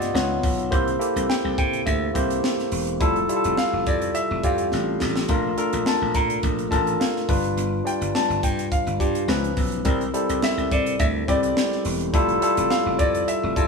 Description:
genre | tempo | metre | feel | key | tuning
polished 1980s jazz-funk pop | 105 BPM | 4/4 | swing 54% on 16ths | unclear | A4 = 440 Hz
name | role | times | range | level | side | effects
warm grand piano | melody | 0.0-13.7 s | D5 to Bb5 | -27 LUFS | left 1 dB | none
barky tine electric piano | accompaniment | 0.0-13.7 s | E#3 to D5 | -23 LUFS | left 1 dB | overdrive
slap bass | bass | 0.0-13.7 s | E1 to C3 | -28 LUFS | left 1 dB | none
crisp fusion drum kit | drums | 0.0-13.7 s | hi-hat, kick drum, snare drum | -26 LUFS | equal | none
room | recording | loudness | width
moderate stone room reverb, RT60 1.2 s | band playing live in one room | -20 LUFS | side -4 dB against mid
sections
0.0-13.7 A section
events
drum fill 4.7-5.3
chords
0.1 C#9; 0.7 C7; 3.0 Fmaj9; 5.3 Bbmaj7; 7.3 G7; 9.3 C#9; 9.9 C; 12.1 Fmaj9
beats
0.15 | 0.72 1.29 1.86 2.43 | 3.01 3.58 4.15 4.72 | 5.29 5.86 6.43 7.00 | 7.57 8.14 8.71 9.29 | 9.86 10.43 10.99 11.56 | 12.13 12.71 13.28

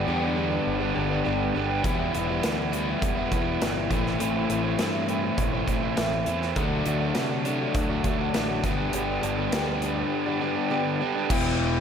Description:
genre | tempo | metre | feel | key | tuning
classic rock | 102 BPM | 4/4 | straight | unclear | A4 = 445 Hz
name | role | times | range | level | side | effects
fingerpicked twelve-string acoustic guitar | accompaniment | 0.0-11.3 s | E2 to G4 | -32 LUFS | equal | none
crunchy overdriven guitar | riff | 0.0-11.8 s | E2 to E4 | -29 LUFS | left 9 dB | slapback echo
overdriven electric guitar | riff | 0.0-11.8 s | E2 to E4 | -28 LUFS | right 8 dB | slapback echo
growling picked electric bass | bass | 0.0-11.8 s | E1 to C3 | -31 LUFS | equal | overdrive
big rock drum kit | drums | 1.8-11.4 s | crash cymbal, hi-hat, kick drum, snare drum | -29 LUFS | equal | none
clear grand piano | accompaniment | 11.3-11.8 s | B4 to G5 | -31 LUFS | left 3 dB | slapback echo
room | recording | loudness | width
wet lush hall reverb, RT60 1.6 s, studio reverb | big arena sound | -23 LUFS | side -7 dB against mid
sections
0.0-11.3 A section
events
none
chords
0.0 G; 1.8 Em; 3.9 Am; 6.6 D; 8.6 G; 11.3 Em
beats
0.08 0.67 1.25 | 1.84 2.43 3.02 3.61 | 4.20 4.79 5.38 5.97 | 6.57 7.16 7.75 8.34 | 8.93 9.53 10.12 10.71 | 11.30

